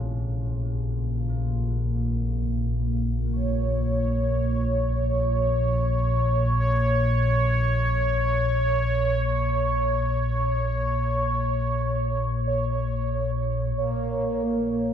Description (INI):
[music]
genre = ambient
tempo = free time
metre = none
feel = none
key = Bb harmonic minor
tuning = A4 = 440 Hz
[part]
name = carillon bells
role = arpeggios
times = 0.0-7.2 s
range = C3 to F4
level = -42 LUFS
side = equal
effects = tape echo
[part]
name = deep rumbling drone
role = drone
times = 0.0-14.9 s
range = Bb1 to Bb2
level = -24 LUFS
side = equal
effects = built-in reverb
[part]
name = bubbling stepped-filter texture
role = texture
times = 3.3-14.9 s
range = Bb3 to Db5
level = -25 LUFS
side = right 1 dB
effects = chorus, built-in reverb
[sound]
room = wet huge ambient reverb, RT60 8.3 s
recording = none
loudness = -22 LUFS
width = side -9 dB against mid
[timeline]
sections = 0.0-13.8 A section; 13.8-14.9 B section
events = none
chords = 0.0 Bbm; 13.8 N.C.